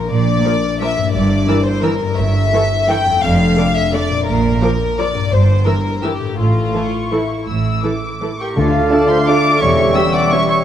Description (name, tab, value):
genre	classical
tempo	158-188 BPM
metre	3/4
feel	rubato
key	D minor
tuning	A4 = 438 Hz
part	warm symphonic violin section	second line	0.0-10.6 s	E4 to G5	-20 LUFS	left 3 dB	none
part	concert harp	arpeggios	0.0-10.6 s	F2 to D6	-21 LUFS	left 6 dB	none
part	warm symphonic cello section	bass	0.1-9.9 s	E2 to D3	-20 LUFS	right 2 dB	none
part	warm symphonic double bass section	bass	0.1-9.9 s	E1 to D2	-21 LUFS	right 3 dB	none
part	dark studio violin section	melody	0.5-10.6 s	F5 to E6	-22 LUFS	left 1 dB	none
part	dark symphonic viola section	accompaniment	0.5-10.4 s	D3 to Bb4	-23 LUFS	right 1 dB	none
part	warm clarinet	second line	8.4-10.6 s	F4 to E5	-22 LUFS	equal	none
part	silver concert flute	second line	8.6-10.6 s	C#6 to D6	-24 LUFS	left 1 dB	none
part	mellow bassoon	accompaniment	8.6-10.6 s	G3 to A3	-20 LUFS	right 3 dB	none
part	clear trombone section	sustained chords	8.6-10.6 s	D3 to A3	-22 LUFS	right 4 dB	none
part	warm French horn section	sustained chords	8.6-10.6 s	C#4 to G4	-24 LUFS	left 1 dB	none
part	clear trumpet section	stabs	8.6-10.6 s	E5 to F5	-22 LUFS	right 3 dB	none
part	timpani	percussion	8.6-9.1 s	D3	-23 LUFS	left 2 dB	none
room	moderate concert hall reverb, RT60 2.0 s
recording	dark, warm production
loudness	-13 LUFS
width	side -10 dB against mid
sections	0.0-8.6 A section; 8.6-10.6 B section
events	none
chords	0.1 Bb; 1.1 Em7b5/G; 2.2 A7/G; 3.2 Dm/F; 4.3 Bb; 5.3 Edim/G; 6.4 A; 8.6 Dm; 9.6 C#dim/E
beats	| 0.12 0.46 0.81 | 1.14 1.48 1.84 | 2.19 2.54 2.90 | 3.24 3.58 3.94 | 4.28 4.63 4.99 | 5.33 5.67 6.04 | 6.39 6.75 7.13 | 7.49 7.85 8.22 | 8.57 8.91 9.27 | 9.61 9.95 10.31